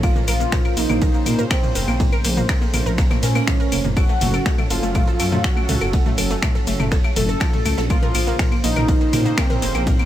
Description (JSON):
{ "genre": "melodic techno", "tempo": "122 BPM", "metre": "4/4", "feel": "straight", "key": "Bb harmonic minor", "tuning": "A4 = 440 Hz", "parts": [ { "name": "fat analog lead", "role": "melody", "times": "0.0-10.0 s", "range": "C4 to A4", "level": "-25 LUFS", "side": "right 1 dB", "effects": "lush chorus, sidechain pumping, tape echo" }, { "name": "sweeping resonant pad", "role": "sustained chords", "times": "0.0-10.1 s", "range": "Db3 to C5", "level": "-29 LUFS", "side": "right 2 dB", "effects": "chorus, sidechain pumping" }, { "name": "analog pluck", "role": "arpeggios", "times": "0.0-10.0 s", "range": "F3 to Bb4", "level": "-27 LUFS", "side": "right 1 dB", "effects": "chorus, sidechain pumping, ping-pong delay" }, { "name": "dark detuned saw bass", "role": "bass", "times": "0.0-9.9 s", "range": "F1 to Bb2", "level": "-23 LUFS", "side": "equal", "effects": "sidechain pumping" }, { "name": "electronic kick drum", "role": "drums", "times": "0.0-10.0 s", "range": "none", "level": "-19 LUFS", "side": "equal", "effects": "none" }, { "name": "jazz brush drum kit", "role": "drums", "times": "0.0-10.0 s", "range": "ride cymbal, snare drum", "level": "-37 LUFS", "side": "right 2 dB", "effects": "none" }, { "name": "techno drum kit", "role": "drums", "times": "0.0-10.1 s", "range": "claves, finger snaps, hi-hat, ride cymbal, shaker, toms", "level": "-24 LUFS", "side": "equal", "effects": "none" } ], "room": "little or no reverb", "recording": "none", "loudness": "-16 LUFS", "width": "side -12 dB against mid", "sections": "0.0-10.1 A section", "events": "none", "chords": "0.0 Bbmadd9; 4.0 Gbm; 7.9 Bbmadd9" }